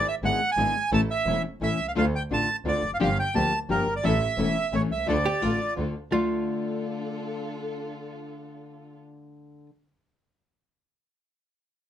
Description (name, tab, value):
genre	tango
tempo	173 BPM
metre	3/4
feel	rubato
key	D harmonic minor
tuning	A4 = 440 Hz
part	bandoneon	melody	0.0-5.7 s	Bb4 to A5	-26 LUFS	right 2 dB	none
part	dark chamber string section	stabs	0.0-9.0 s	Bb3 to A4	-36 LUFS	right 1 dB	none
part	clear double bass	bass	0.0-6.3 s	E1 to D2	-30 LUFS	right 2 dB	none
part	nylon-string guitar	accompaniment	0.2-9.7 s	D3 to G#4	-29 LUFS	left 5 dB	none
part	archtop guitar, miked and amplified	second line	5.3-9.7 s	F4 to G4	-30 LUFS	right 7 dB	none
room	moderate club reverb, RT60 0.6 s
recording	none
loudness	-23 LUFS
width	side -10 dB against mid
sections	0.0-6.1 A section; 6.1-8.2 B section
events	none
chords	0.0 E7/G#; 0.9 A; 2.0 Dm; 3.0 Gm7; 4.0 A; 5.1 Dm